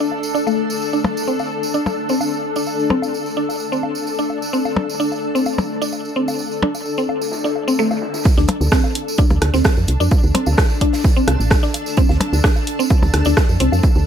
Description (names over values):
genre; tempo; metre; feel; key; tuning
minimal techno; 129 BPM; 4/4; straight; unclear; A4 = 440 Hz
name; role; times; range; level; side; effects
mallet-like synth pluck; riff; 0.0-13.6 s; A3 to D4; -22 LUFS; left 1 dB; wide subtle chorus, sidechain pumping, dub echo
tambourine; percussion; 0.0-14.0 s; none; -32 LUFS; right 4 dB; none
granular cloud pad; texture; 0.0-14.1 s; D4 to A5; -23 LUFS; left 2 dB; built-in reverb, sidechain pumping
gated 80s drum kit; drums; 0.1-13.9 s; hi-hat, snare drum; -34 LUFS; right 2 dB; high-pass filter on hats, low-pass filter on hats, high-pass filter on snare, low-pass filter on snare, high-pass filter on room, low-pass filter on room
woodblock and percussion blips; percussion; 0.1-13.8 s; none; -23 LUFS; left 2 dB; dub echo
electronic kick drum; drums; 8.3-13.9 s; none; -15 LUFS; right 1 dB; none
woody FM bass; bass; 8.4-14.0 s; A1 to F2; -17 LUFS; right 1 dB; sidechain pumping
punchy analog drum machine; drums; 8.5-13.7 s; hi-hat, rim click; -21 LUFS; right 1 dB; none
room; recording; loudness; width
light reverb; none; -16 LUFS; side -8 dB against mid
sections
0.0-8.3 A section; 8.3-14.1 B section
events
filter sweep on synth arpeggio sound 0.0-8.3; drop 8.3-14.1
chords
0.0 D5